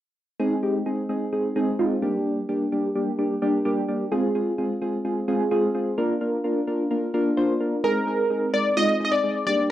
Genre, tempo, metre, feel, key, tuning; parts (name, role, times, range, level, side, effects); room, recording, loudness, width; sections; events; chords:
pop; 129 BPM; 4/4; straight; A4 = 441 Hz
soft electric-piano-like synth keys; accompaniment; 0.4-9.7 s; G3 to C5; -22 LUFS; equal; chorus, phaser
funky polysynth comp; melody; 7.8-9.7 s; Bb4 to Eb5; -21 LUFS; equal; chorus, cassette tape, tape echo
wet studio reverb, RT60 0.6 s; home recording on cassette; -22 LUFS; side -13 dB against mid
0.4-7.8 A section; 7.8-9.7 B section
0.4 Ab; 2.0 Gm; 4.1 Fm; 6.0 Bb; 7.8 Abadd9